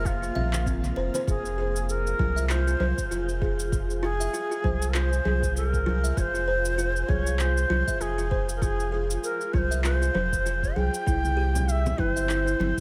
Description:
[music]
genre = organic downtempo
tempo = 98 BPM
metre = 4/4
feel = swing 57% on 16ths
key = F harmonic minor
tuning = A4 = 439 Hz
[part]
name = breathy bright ney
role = melody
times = 0.0-12.8 s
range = F4 to G5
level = -32 LUFS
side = equal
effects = dub echo, shimmer reverb
[part]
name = granular cloud pad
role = sustained chords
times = 0.0-12.8 s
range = Bb3 to E5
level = -42 LUFS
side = equal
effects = built-in reverb, sidechain pumping, shimmer reverb
[part]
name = buzzing kalimba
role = arpeggios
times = 0.0-12.8 s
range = C4 to E5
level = -34 LUFS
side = equal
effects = dub echo, shimmer reverb
[part]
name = warm sub bass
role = bass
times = 0.0-12.7 s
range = F1 to C2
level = -29 LUFS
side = equal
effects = sidechain pumping
[part]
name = electronic kick drum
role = drums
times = 0.1-12.8 s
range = none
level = -31 LUFS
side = equal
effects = small room ambience
[part]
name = electronic shaker, handclaps and congas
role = drums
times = 0.1-12.8 s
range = none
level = -36 LUFS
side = equal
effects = small room ambience, dub echo
[part]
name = congas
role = percussion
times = 0.4-1.2, 11.2-12.7 s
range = none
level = -39 LUFS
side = equal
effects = dub echo
[sound]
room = light reverb, small room ambience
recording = echo-heavy mix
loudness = -26 LUFS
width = mono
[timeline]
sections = 0.0-1.3 A section; 1.3-12.8 B section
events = none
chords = 0.0 Bb5; 1.3 Fm; 11.1 C

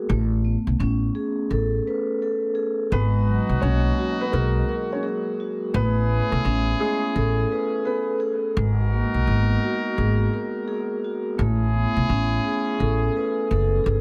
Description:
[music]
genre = hip hop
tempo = 85 BPM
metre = 4/4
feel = swing 63% on 16ths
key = unclear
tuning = A4 = 443 Hz
[part]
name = vibraphone with soft mallets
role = accompaniment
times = 0.0-14.0 s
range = F#3 to B4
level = -28 LUFS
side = equal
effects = cassette tape, high-pass filter, low-pass filter
[part]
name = upright bass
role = bass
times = 0.1-14.0 s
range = F#1 to B1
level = -24 LUFS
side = equal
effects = none
[part]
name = dark upright piano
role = melody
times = 2.9-8.2 s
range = G#3 to C#5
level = -32 LUFS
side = equal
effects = high-pass filter, low-pass filter, tape echo
[part]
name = clear horn section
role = stabs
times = 2.9-13.8 s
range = B2 to A#4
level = -32 LUFS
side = equal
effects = high-pass filter, low-pass filter, tape echo
[sound]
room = light reverb, small room ambience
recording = none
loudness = -23 LUFS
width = mono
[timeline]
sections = 0.0-14.0 A section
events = none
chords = 0.1 Amaj9; 2.9 G#m9; 5.7 Amaj9; 8.6 G#m9; 11.4 Amaj9

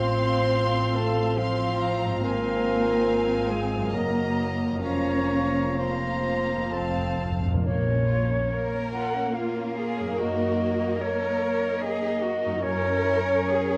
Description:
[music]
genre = classical, slow romantic movement for symphony orchestra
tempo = 63-75 BPM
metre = 3/4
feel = rubato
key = Bb minor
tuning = A4 = 442 Hz
[part]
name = rich chamber violin section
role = melody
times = 0.0-13.8 s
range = Bb4 to C6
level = -38 LUFS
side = equal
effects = none
[part]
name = clear oboe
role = second line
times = 0.0-7.3 s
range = A5 to C6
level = -38 LUFS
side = equal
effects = none
[part]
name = dark clarinet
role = second line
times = 0.0-7.2 s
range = F4 to Db5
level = -32 LUFS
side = equal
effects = none
[part]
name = rich chamber violin section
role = second line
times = 0.0-13.8 s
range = Bb3 to F5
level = -38 LUFS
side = equal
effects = none
[part]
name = silver concert flute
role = second line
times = 0.0-13.8 s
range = Db5 to Db6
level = -32 LUFS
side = equal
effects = none
[part]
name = rich chamber viola section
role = accompaniment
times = 0.0-13.8 s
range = Bb3 to Db4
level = -35 LUFS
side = equal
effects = none
[part]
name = warm bassoon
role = accompaniment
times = 0.0-7.3 s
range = F3 to Gb3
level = -36 LUFS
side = equal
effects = none
[part]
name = mellow French horn section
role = sustained chords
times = 0.0-7.3 s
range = A3 to Gb4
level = -36 LUFS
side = equal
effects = none
[part]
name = concert harp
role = arpeggios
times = 0.0-13.8 s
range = F2 to Eb5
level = -38 LUFS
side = equal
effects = none
[part]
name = rich studio double bass section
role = bass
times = 0.0-13.3 s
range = F1 to Gb2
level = -33 LUFS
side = equal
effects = none
[part]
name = warm studio cello section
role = bass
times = 0.0-13.8 s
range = F3 to Bb4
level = -33 LUFS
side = equal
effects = none
[part]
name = timpani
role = percussion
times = 6.7-7.6 s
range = F2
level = -32 LUFS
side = equal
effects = none
[sound]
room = wet recital hall reverb, RT60 1.5 s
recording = dark, warm production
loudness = -25 LUFS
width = mono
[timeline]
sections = 0.0-7.7 A section; 7.7-13.8 B section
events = timpani fill 6.7-7.7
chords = 0.0 F/A; 2.2 Fm/Ab; 3.9 Ebm/Gb; 4.8 Fsus4; 6.7 F; 7.7 Bbm; 10.2 Ebm/Gb; 12.6 Gb7

